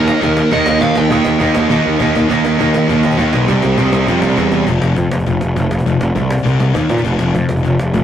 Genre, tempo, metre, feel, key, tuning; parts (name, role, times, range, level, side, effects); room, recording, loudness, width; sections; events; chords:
punk rock; 202 BPM; 4/4; straight; A4 = 440 Hz
overdriven semi-hollow guitar; melody; 0.0-2.0 s; Bb4 to G5; -20 LUFS; right 2 dB
sludgy distorted guitar; riff; 0.0-8.0 s; F2 to Eb4; -20 LUFS; left 5 dB; overdrive
sludgy distorted guitar; riff; 0.0-4.7 s; C3 to Eb4; -15 LUFS; right 5 dB; overdrive
fuzz picked electric bass; bass; 0.0-8.0 s; F1 to Bb2; -15 LUFS; equal; overdrive
cajon; drums; 0.1-8.0 s; -23 LUFS; equal
light reverb; rough rehearsal-room recording, tube saturation; -12 LUFS; side -10 dB against mid
0.0-2.3 A section; 2.3-4.7 B section; 4.7-8.0 C section
drum fill 1.7-2.3, 4.4
0.0 Eb; 2.3 Eb5; 3.5 C; 4.7 F5; 6.4 C5; 6.7 Eb5; 7.0 F5